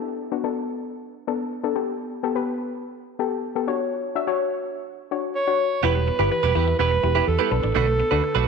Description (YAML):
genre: pop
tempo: 125 BPM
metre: 4/4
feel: straight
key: unclear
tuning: A4 = 440 Hz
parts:
  - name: soft round pluck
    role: accompaniment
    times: 0.0-8.3 s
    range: B3 to E5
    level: -26 LUFS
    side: left 7 dB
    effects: chorus
  - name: breathy alto saxophone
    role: melody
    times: 5.4-8.4 s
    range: A4 to C#5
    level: -23 LUFS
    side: right 3 dB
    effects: slapback echo
  - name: mallet-like synth pluck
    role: arpeggios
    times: 5.8-8.4 s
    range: D3 to E4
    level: -33 LUFS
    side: left 8 dB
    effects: chorus, slapback echo
  - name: direct-recorded clean electric guitar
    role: riff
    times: 5.8-8.5 s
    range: A3 to B4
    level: -25 LUFS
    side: right 15 dB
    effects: lush chorus
  - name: vintage muted fingered electric bass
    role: bass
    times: 5.8-8.5 s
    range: E1 to E2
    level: -23 LUFS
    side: right 3 dB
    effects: none
room: wet echo chamber reverb, RT60 1.9 s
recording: 1960s-style stereo with parts hard left and right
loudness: -21 LUFS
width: side -5 dB against mid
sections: 0.0-5.8 A section; 5.8-8.5 B section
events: none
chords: 0.0 Bm7; 1.8 Gadd9; 3.7 Dmaj7; 5.8 Em; 7.5 Bm7